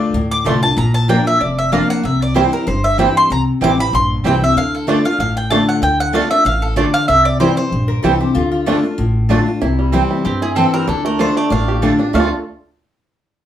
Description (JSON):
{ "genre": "bluegrass", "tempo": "190 BPM", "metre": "4/4", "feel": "swing 54% on 8ths", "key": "D minor", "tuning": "A4 = 441 Hz", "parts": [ { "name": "mandolin", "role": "melody", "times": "0.0-12.3 s", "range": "G4 to D6", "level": "-17 LUFS", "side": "equal", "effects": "none" }, { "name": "lap resonator guitar", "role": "second line", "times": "0.0-0.2, 7.9-9.1 s", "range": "F4 to D5", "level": "-23 LUFS", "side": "left 4 dB", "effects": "none" }, { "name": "picked steel-string acoustic guitar", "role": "accompaniment", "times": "0.0-12.3 s", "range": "F2 to F4", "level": "-18 LUFS", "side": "left 2 dB", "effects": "none" }, { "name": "upright bass", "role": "bass", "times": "0.0-12.3 s", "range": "F1 to G2", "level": "-20 LUFS", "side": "equal", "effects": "none" }, { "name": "bluegrass banjo", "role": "arpeggios", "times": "0.5-12.3 s", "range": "G3 to A4", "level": "-19 LUFS", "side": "right 2 dB", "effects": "none" }, { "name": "mandolin", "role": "stabs", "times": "0.5-12.3 s", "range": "A3 to Bb5", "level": "-21 LUFS", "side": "right 7 dB", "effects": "none" } ], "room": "wet studio reverb, RT60 0.5 s", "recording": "heard from further back in the room", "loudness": "-13 LUFS", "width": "side -10 dB against mid", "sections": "0.0-9.6 A section; 9.6-12.1 B section; 12.1-13.4 C section", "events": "none", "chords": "0.0 Dm; 0.8 Bb; 2.0 C; 4.6 Dm; 7.1 C; 8.4 Dm; 9.6 C; 10.9 Dm" }